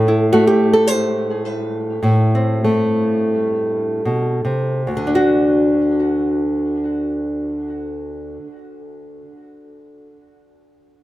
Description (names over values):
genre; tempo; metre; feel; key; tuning
folk, solo fingerstyle acoustic guitar; 71-113 BPM; 4/4; straight; unclear; A4 = 442 Hz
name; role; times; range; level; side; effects
nylon-string guitar; solo; 0.0-8.6 s; D2 to C5; -16 LUFS; equal; tape echo
room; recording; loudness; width
moderate studio ambience, RT60 0.5 s; none; -15 LUFS; side -16 dB against mid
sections
0.0-4.9 A section; 4.9-11.0 B section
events
slowing down 0.0-4.9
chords
0.0 Am; 4.9 N.C.